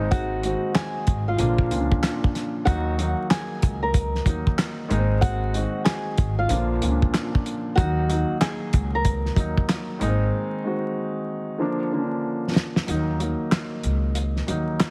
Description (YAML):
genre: hip hop, boom-bap hip-hop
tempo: 94 BPM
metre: 4/4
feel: swing 63% on 16ths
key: Eb harmonic minor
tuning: A4 = 440 Hz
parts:
  - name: dark grand piano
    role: accompaniment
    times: 0.0-14.9 s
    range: Bb2 to Gb4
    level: -30 LUFS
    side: equal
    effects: high-pass filter, low-pass filter
  - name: upright bass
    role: bass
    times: 0.0-14.8 s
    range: Ab1 to Eb2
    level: -28 LUFS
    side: equal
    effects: none
  - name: flamenco guitar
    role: melody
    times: 0.1-9.7 s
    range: F4 to Bb5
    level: -30 LUFS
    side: equal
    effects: high-pass filter, low-pass filter, digital delay
  - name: cloth-damped thuddy drum kit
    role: drums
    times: 0.1-14.9 s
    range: handclaps, hi-hat, kick drum, snare drum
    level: -25 LUFS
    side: equal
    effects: none
room: light reverb, small room ambience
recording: heavily compressed radio sound, vinyl crackle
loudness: -24 LUFS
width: mono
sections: 0.0-12.9 A section; 12.9-14.9 B section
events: break 10.3-12.9; drum fill 12.2-12.9; kick muted 12.9-14.9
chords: 0.0 Ab; 1.4 Bb; 2.7 Ebm; 4.9 Ab; 6.5 Bb; 7.8 Ebm; 10.0 Ab; 11.6 Bb; 12.9 Ebm